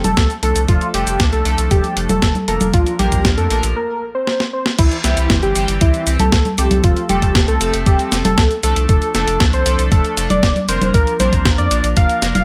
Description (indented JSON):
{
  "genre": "italo disco",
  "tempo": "117 BPM",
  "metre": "4/4",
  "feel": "straight",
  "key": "F major",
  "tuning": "A4 = 440 Hz",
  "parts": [
    { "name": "unison lead", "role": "melody", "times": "0.0-12.4 s", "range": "E4 to F5", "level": "-22 LUFS", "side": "equal", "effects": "digital delay" },
    { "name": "chorused polysynth", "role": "stabs", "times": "0.0-12.4 s", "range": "E3 to Bb4", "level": "-26 LUFS", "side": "equal", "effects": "none" },
    { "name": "round analog bass", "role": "bass", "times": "0.0-12.4 s", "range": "F1 to F2", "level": "-22 LUFS", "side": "equal", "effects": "none" },
    { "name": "clean 12-bit digital drum machine", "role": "drums", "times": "0.0-12.4 s", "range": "cabasa, congas, crash cymbal, hi-hat, snare drum", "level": "-21 LUFS", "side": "equal", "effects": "none" },
    { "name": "electronic kick drum", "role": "drums", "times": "0.2-12.1 s", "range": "none", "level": "-17 LUFS", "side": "equal", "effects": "none" }
  ],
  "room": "light reverb",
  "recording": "none",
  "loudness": "-16 LUFS",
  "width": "mono",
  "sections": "0.0-4.8 A section; 4.8-12.4 B section",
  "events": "break 3.8-4.8; drum fill 4.3-4.8",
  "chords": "0.0 F; 0.7 Dm/F; 2.7 Bb; 4.8 C; 6.8 F; 8.9 Dm/F; 10.9 Bb"
}